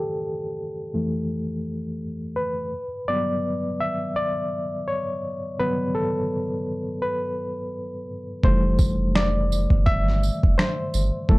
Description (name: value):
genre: lo-fi hip hop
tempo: 84 BPM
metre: 4/4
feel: swing 57% on 16ths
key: unclear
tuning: A4 = 441 Hz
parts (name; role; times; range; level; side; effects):
- barky reed electric piano; accompaniment; 0.0-11.4 s; F2 to E5; -25 LUFS; left 1 dB; overdrive, fast tremolo, cassette tape, low-pass filter
- saturated sub bass; bass; 8.4-11.4 s; F1 to G1; -23 LUFS; equal; none
- dusty soul sampler-style drum kit; drums; 8.4-11.4 s; finger snaps, kick drum, snare drum; -19 LUFS; equal; overdrive
- tambourine; percussion; 8.8-11.1 s; none; -36 LUFS; right 10 dB; none
room: little or no reverb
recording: dark, warm production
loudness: -22 LUFS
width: side -22 dB against mid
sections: 0.0-8.4 A section; 8.4-11.4 B section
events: reed electric piano solo 0.0-8.4, 8.4-11.4; filter sweep on reed electric piano 0.0-8.4; hi-hats muted 8.4-11.4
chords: 0.0 Fmaj9; 2.7 Gmaj9; 8.4 Fmaj9